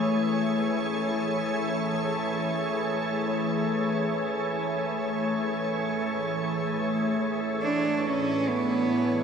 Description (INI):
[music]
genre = ambient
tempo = free time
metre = none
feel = none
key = A major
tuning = A4 = 440 Hz
[part]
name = soft additive organ-like pad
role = sustained chords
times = 0.0-9.2 s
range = A2 to C#5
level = -26 LUFS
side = equal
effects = ensemble chorus, built-in reverb
[part]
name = warm cello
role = melody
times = 7.6-9.2 s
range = B3 to D4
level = -25 LUFS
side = right 2 dB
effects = none
[sound]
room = wet shimmer reverb, RT60 8.9 s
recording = cassette tape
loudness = -25 LUFS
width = side -6 dB against mid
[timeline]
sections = 0.0-7.6 A section; 7.6-9.2 B section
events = none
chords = 0.0 Amaj7; 7.6 A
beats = free time